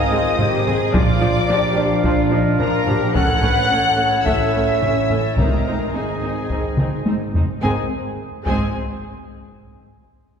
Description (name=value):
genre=cinematic, epic orchestral film score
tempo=108 BPM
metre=4/4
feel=straight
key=unclear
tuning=A4 = 440 Hz
part: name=rich studio violin section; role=melody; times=0.0-8.8 s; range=Ab5 to Gb6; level=-28 LUFS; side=left 2 dB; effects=none
part: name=mellow hollow silver concert flute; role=second line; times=0.0-8.8 s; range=Ab4 to Ab5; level=-26 LUFS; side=left 2 dB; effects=none
part: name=rich symphonic violin section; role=second line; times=0.0-8.8 s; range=Ab4 to Gb5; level=-29 LUFS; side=left 4 dB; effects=none
part: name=clear woodwind section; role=sustained chords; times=0.0-7.9 s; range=C4 to Ab5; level=-28 LUFS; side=equal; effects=none
part: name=dark French horn section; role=sustained chords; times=0.0-7.9 s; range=Eb3 to D4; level=-26 LUFS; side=left 3 dB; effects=none
part: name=warm trumpet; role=stabs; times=0.0-8.7 s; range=Ab4 to Gb5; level=-27 LUFS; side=equal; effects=none
part: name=clear symphonic double bass section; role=bass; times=0.0-8.8 s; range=Ab1 to Bb1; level=-25 LUFS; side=right 2 dB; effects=none
part: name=dark studio cello section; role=bass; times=0.0-8.8 s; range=Ab2 to Cb5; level=-27 LUFS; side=right 2 dB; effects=none
part: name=rich symphonic viola section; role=accompaniment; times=0.1-8.8 s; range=F3 to Eb4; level=-26 LUFS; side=right 1 dB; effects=none
part: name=taiko ensemble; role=drums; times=0.4-9.5 s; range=none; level=-23 LUFS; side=equal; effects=none
part: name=timpani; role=percussion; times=5.4-8.7 s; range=Ab2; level=-29 LUFS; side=equal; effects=none
room=wet concert hall reverb, RT60 2.4 s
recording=recorded in a church or concert hall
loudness=-16 LUFS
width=side -7 dB against mid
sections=0.0-7.6 A section; 7.6-9.9 B section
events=drum fill 6.8-7.6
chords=0.0 Ab; 0.9 Bb; 3.1 A; 5.4 Ab